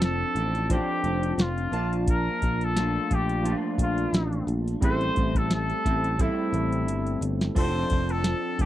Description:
indie pop, bedroom pop; 88 BPM; 4/4; swing 55% on 16ths; F major; A4 = 440 Hz
clear trumpet; melody; 0.0-8.7 s; E4 to C5; -30 LUFS; left 1 dB; lush chorus, slapback echo
chorused retro synth keys; accompaniment; 0.0-8.7 s; F3 to A5; -32 LUFS; right 4 dB
electric guitar through a small old amp; accompaniment; 0.0-8.7 s; A2 to A4; -32 LUFS; left 4 dB; analog chorus, vibrato effect
picked electric bass; bass; 0.0-8.7 s; F1 to Bb1; -28 LUFS; equal
soft vintage rhythm box; drums; 0.0-8.7 s; crash cymbal, hi-hat, kick drum, snare drum; -26 LUFS; equal; overdrive
little or no reverb; dry, close 1970s-style studio recording; -23 LUFS; side -13 dB against mid
0.0-8.7 A section
drum fill 6.9-7.6
0.0 F6; 1.7 Bbmaj7; 4.8 Am7; 7.6 F6
0.02 0.71 1.39 | 2.08 2.76 3.45 4.14 | 4.82 5.51 6.19 6.88 | 7.56 8.25

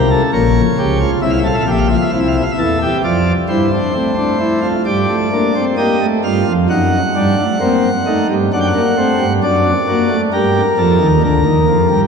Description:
classical, baroque-style 3-part fugue for pipe organ; 66 BPM; 4/4; straight; G minor from 4.9 s; A4 = 440 Hz
pipe organ, principal chorus; solo; 0.0-12.1 s; Bb1 to G5; -12 LUFS; equal
wet cathedral reverb, RT60 5.3 s; dark, warm production; -12 LUFS; side -5 dB against mid
0.0-4.9 A section; 4.9-12.1 B section
0.0 Bbm69; 1.2 C7; 3.0 F; 4.9 Gm; 6.7 F#dim7; 8.5 D7/F#; 10.3 Gm
0.34 | 1.24 2.14 3.04 3.95 | 4.87 5.78 6.69 7.61 | 8.52 9.43 10.33 11.23

